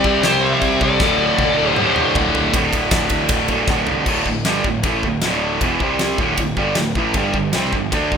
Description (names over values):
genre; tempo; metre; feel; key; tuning
heavy metal; 156 BPM; 4/4; straight; unclear; A4 = 445 Hz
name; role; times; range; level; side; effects
high-gain lead guitar; melody; 0.0-2.1 s; C5 to E5; -20 LUFS; left 3 dB; distortion
high-gain lead guitar; second line; 0.0-2.1 s; G4 to C5; -27 LUFS; right 1 dB; distortion, tape echo
heavy high-gain guitar; riff; 0.0-8.2 s; D2 to D4; -23 LUFS; left 16 dB; distortion
scooped high-gain guitar; riff; 0.0-2.5 s; D2 to C4; -22 LUFS; left 3 dB; distortion
tight distorted guitar; riff; 0.0-8.2 s; D2 to D4; -19 LUFS; right 6 dB; distortion
fuzz picked electric bass; bass; 0.0-8.2 s; D1 to D2; -27 LUFS; left 1 dB; overdrive
big rock drum kit; drums; 0.0-8.2 s; china cymbal, crash cymbal, kick drum, ride cymbal, snare drum, toms; -22 LUFS; left 1 dB; none
room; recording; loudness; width
small room ambience; rough home demo mix; -15 LUFS; side -7 dB against mid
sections
0.0-2.5 A section; 2.5-4.1 B section; 4.1-8.2 C section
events
half time 0.0-2.5; drum fill 1.0-2.5, 3.7-4.1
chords
0.0 C5; 1.0 D5; 5.8 C5; 6.2 D5; 7.2 G5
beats
0.24 0.63 | 1.01 1.39 1.78 2.16 | 2.54 2.93 3.31 3.70 | 4.08 4.47 4.85 5.24 | 5.62 6.01 6.39 6.78 | 7.17 7.55 7.94